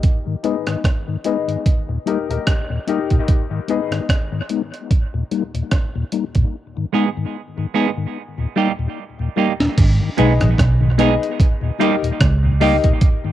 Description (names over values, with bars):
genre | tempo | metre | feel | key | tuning
dub reggae | 74 BPM | 4/4 | swing 56% on 16ths | G# harmonic minor | A4 = 440 Hz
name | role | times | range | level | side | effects
breakbeat sampler-style drum kit | drums | 0.0-13.2 s | crash cymbal, hi-hat, kick drum, rim click, snare drum | -17 LUFS | right 1 dB | none
mellow tonewheel organ | accompaniment | 0.3-13.3 s | D#2 to D#4 | -23 LUFS | left 5 dB | chorus vibrato, stopped rotary speaker, low-pass filter, cassette tape, dub echo
clear baby grand piano | stabs | 0.4-3.9, 10.2-12.9 s | D#4 to D#5 | -23 LUFS | left 7 dB | low-pass filter, cassette tape, dub echo
semi-hollow electric guitar | accompaniment | 6.9-12.8 s | G3 to G#4 | -22 LUFS | right 9 dB | low-pass filter, cassette tape, dub echo
vintage muted fingered electric bass | bass | 9.8-12.8 s | G#1 to C#2 | -15 LUFS | right 1 dB | none
room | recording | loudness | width
light reverb | home recording on cassette | -16 LUFS | side -12 dB against mid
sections
0.0-9.8 A section; 9.8-13.3 B section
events
break 0.0-6.5; filter sweep 0.0-9.8; drum fill 8.2-9.8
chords
0.0 G#m; 1.7 D#; 3.3 G#m; 4.9 D#; 6.5 G#m; 8.2 D#; 9.8 G#m; 11.4 D#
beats
| 0.04 0.85 1.66 2.47 | 3.29 4.10 4.91 5.72 | 6.53 7.34 8.15 8.96 | 9.78 10.59 11.40 12.21 | 13.02